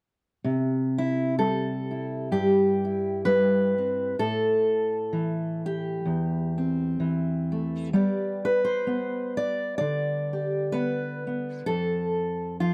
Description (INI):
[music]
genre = folk, solo fingerstyle acoustic guitar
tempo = 64 BPM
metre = 4/4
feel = swing 56% on 8ths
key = C major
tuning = A4 = 440 Hz
[part]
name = fingerpicked steel-string acoustic guitar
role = solo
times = 0.4-12.7 s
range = E2 to D5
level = -26 LUFS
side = equal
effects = none
[sound]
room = light reverb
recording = none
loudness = -26 LUFS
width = mono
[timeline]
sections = 0.4-12.7 A section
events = none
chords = 0.4 C; 4.2 Am; 7.9 G; 11.7 F